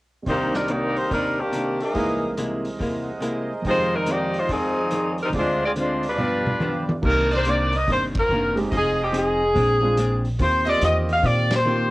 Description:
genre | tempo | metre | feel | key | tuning
jazz, big band swing | 142 BPM | 4/4 | swing 65% on 8ths | C minor | A4 = 440 Hz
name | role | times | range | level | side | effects
warm concert grand piano | accompaniment | 0.2-11.9 s | C2 to G5 | -30 LUFS | right 2 dB | none
bright saxophone section | melody | 0.3-11.9 s | Eb3 to F5 | -22 LUFS | left 1 dB | cassette tape
archtop guitar, miked and amplified | accompaniment | 0.3-11.9 s | F2 to Ab4 | -28 LUFS | left 1 dB | none
clear trumpet section | stabs | 0.3-11.2 s | F4 to D6 | -31 LUFS | right 2 dB | none
vintage drum kit | drums | 0.3-11.6 s | crash cymbal, hi-hat, kick drum, ride cymbal, snare drum, toms | -30 LUFS | equal | cassette tape
upright bass | bass | 7.0-11.9 s | F1 to Bb2 | -24 LUFS | equal | none
room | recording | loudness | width
light reverb, small room reverb | home recording on cassette | -20 LUFS | side -19 dB against mid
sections
0.3-7.0 A section; 7.0-11.9 B section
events
drum fill 6.2-7.0; band accent 8.1, 11.5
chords
0.3 Cm9; 2.0 C7alt; 3.6 Fm7; 5.3 Dm7b5; 6.2 G7; 7.0 Cm9; 8.7 Fm7; 9.6 Bb9; 10.4 Eb69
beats
| 0.27 0.69 1.11 1.54 | 1.96 2.38 2.80 3.23 | 3.65 4.07 4.49 4.92 | 5.34 5.76 6.18 6.60 | 7.03 7.45 7.87 8.29 | 8.71 9.13 9.55 9.98 | 10.40 10.82 11.24 11.66

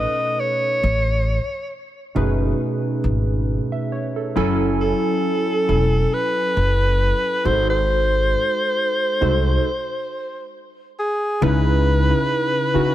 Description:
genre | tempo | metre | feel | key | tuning
contemporary R&B | 68 BPM | 4/4 | swing 54% on 16ths | C# minor | A4 = 440 Hz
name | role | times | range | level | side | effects
warm alto saxophone | melody | 0.0-12.9 s | G#4 to D#5 | -21 LUFS | equal | digital delay
warm analog keys | accompaniment | 0.0-12.9 s | B2 to G#5 | -22 LUFS | equal | chorus
upright bass | bass | 0.0-12.8 s | E1 to C#2 | -20 LUFS | equal | none
room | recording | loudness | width
light reverb, small room ambience | none | -18 LUFS | side -13 dB against mid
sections
0.0-11.4 A section; 11.4-12.9 B section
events
stop 9.7-11.4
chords
0.0 B7; 0.8 Amaj9#11; 4.4 F#m9; 7.5 G#7b9; 11.4 C#m7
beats
| 0.83 1.72 2.60 3.48 | 4.36 5.25 6.13 7.01 | 7.89 8.78 9.66 10.54 | 11.42 12.30

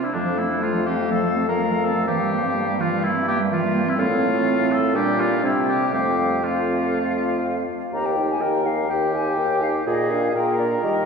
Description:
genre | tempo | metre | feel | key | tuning
quick classical-period movement for wind quintet | 124 BPM | 4/4 | straight | F major, Eb major from 7.9 s | A4 = 440 Hz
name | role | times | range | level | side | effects
warm oboe | second line | 0.0-11.1 s | D4 to Bb4 | -25 LUFS | left 2 dB | none
clear French horn | accompaniment | 0.0-11.1 s | G3 to G4 | -28 LUFS | left 2 dB | none
silver concert flute | melody | 0.1-11.1 s | D5 to Bb5 | -27 LUFS | left 5 dB | none
warm clarinet | accompaniment | 0.1-11.1 s | E3 to Bb4 | -25 LUFS | right 4 dB | none
warm bassoon | bass | 0.1-11.1 s | Eb2 to Eb3 | -26 LUFS | right 2 dB | none
room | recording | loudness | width
wet church reverb, RT60 3.6 s | heard from further back in the room | -19 LUFS | side -5 dB against mid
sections
0.0-7.9 A section; 7.9-11.1 B section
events
none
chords
0.1 F; 2.1 C7/G; 4.0 F/A; 4.9 Gm/Bb; 5.4 C; 5.9 F; 7.9 Eb; 9.9 Bb7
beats
| 0.15 0.63 1.12 1.60 | 2.08 2.56 3.03 3.51 | 3.98 4.47 4.95 5.43 | 5.92 6.43 6.93 7.43 | 7.93 8.41 8.90 9.38 | 9.86 10.35 10.83

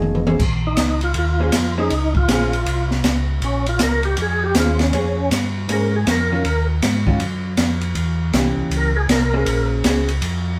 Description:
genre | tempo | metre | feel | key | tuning
soul jazz organ trio | 159 BPM | 4/4 | swing 64% on 8ths | Bb dorian | A4 = 440 Hz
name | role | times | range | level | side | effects
vintage hollow-body jazz guitar | accompaniment | 0.0-10.1 s | Eb3 to C5 | -26 LUFS | equal | none
mellow tonewheel organ | bass | 0.0-10.6 s | F1 to Ab2 | -23 LUFS | equal | slow rotary speaker
open jazz drum kit | drums | 0.0-10.3 s | crash cymbal, hi-hat, kick drum, ride cymbal, snare drum, toms | -23 LUFS | equal | none
percussive tonewheel organ | melody | 0.7-9.7 s | Db4 to Bb4 | -25 LUFS | equal | slow rotary speaker, overdrive, chorus vibrato
room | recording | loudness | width
moderate studio reverb, RT60 0.7 s | band playing live in one room | -19 LUFS | mono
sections
0.4-10.6 A section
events
drum fill 0.0-0.4; tonewheel organ solo 0.4-10.6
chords
0.4 Bbm9; 6.5 Ebmadd9; 8.0 Edim7; 9.5 Bbm9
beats
0.02 | 0.40 0.78 1.15 1.53 | 1.91 2.29 2.67 3.05 | 3.42 3.80 4.18 4.56 | 4.94 5.32 5.70 6.07 | 6.45 6.83 7.21 7.58 | 7.96 8.34 8.72 9.09 | 9.47 9.85 10.23

